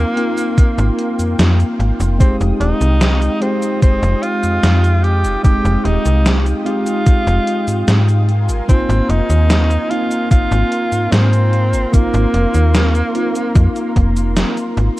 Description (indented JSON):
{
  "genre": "vaporwave",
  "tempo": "74 BPM",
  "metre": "4/4",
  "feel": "straight",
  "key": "Ab major",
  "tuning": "A4 = 442 Hz",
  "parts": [
    { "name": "clear tenor saxophone", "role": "melody", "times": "0.0-14.4 s", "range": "Bb3 to G4", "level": "-21 LUFS", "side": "equal", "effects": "vintage 12-bit sampler grit, tape echo" },
    { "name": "mellow tine electric piano", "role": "accompaniment", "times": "0.0-15.0 s", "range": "Ab3 to G4", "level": "-20 LUFS", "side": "equal", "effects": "analog chorus" },
    { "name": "lush unison pad", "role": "sustained chords", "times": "0.0-15.0 s", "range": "Ab3 to Eb6", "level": "-29 LUFS", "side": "equal", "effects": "chorus" },
    { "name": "slap-like FM bass", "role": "bass", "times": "0.0-14.9 s", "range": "Eb1 to Ab2", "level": "-14 LUFS", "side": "equal", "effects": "none" },
    { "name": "gated 80s digital drum machine", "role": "drums", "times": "0.2-15.0 s", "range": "cabasa, hi-hat, snare drum", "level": "-20 LUFS", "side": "equal", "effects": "gated reverb, gated reverb snare" },
    { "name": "electronic kick drum", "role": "drums", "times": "0.6-14.1 s", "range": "none", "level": "-11 LUFS", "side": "equal", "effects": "overdrive" }
  ],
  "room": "little or no reverb",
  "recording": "cassette tape",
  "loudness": "-12 LUFS",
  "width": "side -17 dB against mid",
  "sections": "0.0-15.0 A section",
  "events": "none",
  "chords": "0.0 Ab69 (rootless); 2.2 Fm9; 8.3 Ab69"
}